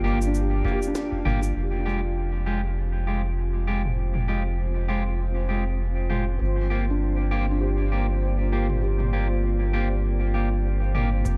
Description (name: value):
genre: ambient dub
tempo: 99 BPM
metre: 4/4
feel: swing 57% on 16ths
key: F dorian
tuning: A4 = 440 Hz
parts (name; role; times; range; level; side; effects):
- deep dark ambient pad; sustained chords; 0.0-11.4 s; Ab3 to F5; -36 LUFS; equal; chorus, built-in reverb
- felt-muted upright piano; arpeggios; 0.0-11.3 s; D4 to C5; -36 LUFS; equal; low-pass filter, analog delay
- clean electric guitar; stabs; 0.0-11.1 s; Ab3 to G4; -34 LUFS; equal; spring reverb, dub echo
- soft dub sub bass; bass; 0.0-11.4 s; F1 to G1; -27 LUFS; equal; none
- organic electronic drum kit; drums; 0.2-11.4 s; cabasa, snare drum, toms; -37 LUFS; equal; low-pass filter on perc, small room ambience, low-pass filter on snare, low-pass filter on toms, dub echo
- electronic kick drum; drums; 0.6-1.2, 11.3-11.4 s; none; -33 LUFS; equal; small room ambience
- bubbling stepped-filter texture; texture; 2.6-11.4 s; Bb3 to C5; -42 LUFS; equal; chorus, built-in reverb
room: light reverb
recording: echo-heavy mix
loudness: -25 LUFS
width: mono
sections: 0.0-1.6 A section; 1.6-11.3 B section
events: filter sweep on drum 1.6-11.3; filter sweep on felt piano 1.6-11.3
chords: 0.0 Gm7; 1.6 Fmadd9; 6.4 Gm7